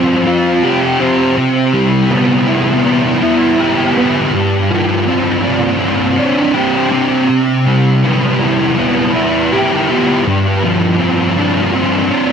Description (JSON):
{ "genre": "rock", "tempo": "81 BPM", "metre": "4/4", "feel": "straight", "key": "G mixolydian", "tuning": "A4 = 440 Hz", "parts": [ { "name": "thick fuzz guitar", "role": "solo", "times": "0.0-12.3 s", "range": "G2 to G4", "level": "-11 LUFS", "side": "equal", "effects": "distortion, ensemble chorus, analog delay" } ], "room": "light reverb", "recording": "none", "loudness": "-11 LUFS", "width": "side -7 dB against mid", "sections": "0.0-12.3 A section", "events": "none", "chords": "0.0 G7sus4; 1.4 Cmaj7; 4.3 G7sus4; 7.3 Cmaj7; 10.3 G7sus4" }